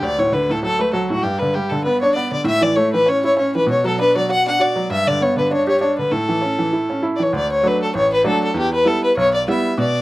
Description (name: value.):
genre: celtic folk, Celtic reel.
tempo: 197 BPM.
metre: 4/4.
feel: swing 55% on 8ths.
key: A mixolydian.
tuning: A4 = 440 Hz.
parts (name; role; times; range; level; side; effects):
rich fiddle; melody; 0.0-10.0 s; F#4 to F#5; -17 LUFS; left 1 dB; none.
bright upright piano; accompaniment; 0.0-10.0 s; A1 to G4; -20 LUFS; right 1 dB; none.
room: light reverb.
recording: dry, close 1970s-style studio recording.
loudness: -15 LUFS.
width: side -17 dB against mid.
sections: 0.0-7.3 A section; 7.3-10.0 B section.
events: none.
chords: 0.0 D; 1.2 G; 2.5 A; 3.7 Bm; 4.9 G; 6.1 A; 7.3 D; 8.6 Em.